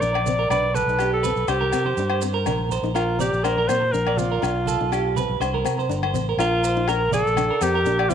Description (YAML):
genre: highlife guitar band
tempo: 122 BPM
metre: 4/4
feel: swing 53% on 16ths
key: Bb major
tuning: A4 = 437 Hz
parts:
  - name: bright alto saxophone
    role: melody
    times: 0.0-8.1 s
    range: F4 to D5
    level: -23 LUFS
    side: equal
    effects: none
  - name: nylon-string guitar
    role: accompaniment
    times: 0.0-8.1 s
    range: C4 to Eb4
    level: -32 LUFS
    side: left 11 dB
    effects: none
  - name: clean electric guitar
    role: arpeggios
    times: 0.0-8.1 s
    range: G4 to D5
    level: -26 LUFS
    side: right 7 dB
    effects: spring reverb, tape echo
  - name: fingered electric bass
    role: bass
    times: 0.0-8.1 s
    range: G1 to C3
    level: -26 LUFS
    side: left 1 dB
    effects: none
  - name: maracas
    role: percussion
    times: 0.0-8.1 s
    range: none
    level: -38 LUFS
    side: right 12 dB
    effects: none
  - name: congas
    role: percussion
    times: 0.1-8.1 s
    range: none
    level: -34 LUFS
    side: right 8 dB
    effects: none
  - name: agogo bells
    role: percussion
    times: 0.2-8.1 s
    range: none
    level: -30 LUFS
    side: left 13 dB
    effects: none
room: moderate echo chamber reverb, RT60 2.3 s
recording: 1960s-style stereo with parts hard left and right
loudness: -19 LUFS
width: side -8 dB against mid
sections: 0.0-6.4 A section; 6.4-8.1 B section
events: none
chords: 0.0 Bb; 0.5 G/B; 1.5 C5; 2.5 Bb; 4.4 G7/B; 5.4 C5; 6.4 Bb